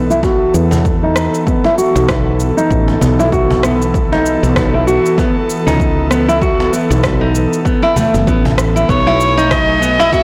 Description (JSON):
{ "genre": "organic downtempo", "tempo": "97 BPM", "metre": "4/4", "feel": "swing 57% on 16ths", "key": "B mixolydian", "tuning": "A4 = 444 Hz", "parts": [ { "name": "airy breathy pad", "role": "sustained chords", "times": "0.0-10.2 s", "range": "E3 to G#5", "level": "-22 LUFS", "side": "equal", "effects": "chorus, sidechain pumping" }, { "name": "nylon-string guitar", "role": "arpeggios", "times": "0.0-10.2 s", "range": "A3 to F#4", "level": "-17 LUFS", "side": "equal", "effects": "low-pass filter, digital delay" }, { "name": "woody fretless electric bass", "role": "bass", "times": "0.0-10.2 s", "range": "F#1 to E2", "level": "-18 LUFS", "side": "equal", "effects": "tube saturation, sidechain pumping" }, { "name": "electronic shaker, rim click and woodblock", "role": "drums", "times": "0.1-10.2 s", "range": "none", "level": "-25 LUFS", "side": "equal", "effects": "overdrive" }, { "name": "electronic kick drum", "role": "drums", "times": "0.2-10.2 s", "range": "none", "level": "-20 LUFS", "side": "equal", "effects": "overdrive" }, { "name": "cajon", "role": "percussion", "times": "0.2-10.2 s", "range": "none", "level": "-26 LUFS", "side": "equal", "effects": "none" }, { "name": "rich kamancheh", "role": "melody", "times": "8.9-10.2 s", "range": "C#5 to E5", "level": "-16 LUFS", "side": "equal", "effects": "none" } ], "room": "moderate concert hall reverb, RT60 2.1 s", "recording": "blown-out, overdriven recording, overdrive", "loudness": "-13 LUFS", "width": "mono", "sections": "0.0-10.2 A section", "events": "filter sweep on nylon-string guitar 0.0-10.2", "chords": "0.0 B7sus4; 8.9 F#madd9" }